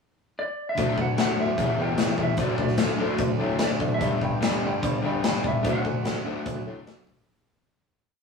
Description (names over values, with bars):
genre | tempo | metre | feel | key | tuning
classic rock | 148 BPM | 4/4 | straight | unclear | A4 = 443 Hz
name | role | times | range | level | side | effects
clean lap steel guitar | melody | 0.4-6.8 s | D5 to G5 | -31 LUFS | equal | none
tonewheel organ | sustained chords | 0.8-7.3 s | A3 to E5 | -42 LUFS | right 1 dB | none
crunchy overdriven guitar | riff | 0.8-7.3 s | G2 to B3 | -30 LUFS | left 6 dB | none
crunchy overdriven guitar | riff | 0.8-7.3 s | E2 to D4 | -32 LUFS | right 4 dB | none
warm bassoon | bass | 0.8-7.2 s | D2 to A2 | -31 LUFS | right 2 dB | none
big rock drum kit | drums | 0.8-7.2 s | hi-hat, kick drum, snare drum | -26 LUFS | left 3 dB | none
room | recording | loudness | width
moderate studio reverb, RT60 0.6 s | rough rehearsal-room recording | -23 LUFS | side -5 dB against mid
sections
0.0-0.8 pickup bar; 0.8-7.3 pre-chorus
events
fade-out 5.7-7.3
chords
0.0 N.C.; 0.8 D; 1.6 Em; 2.4 D; 4.0 G; 5.7 D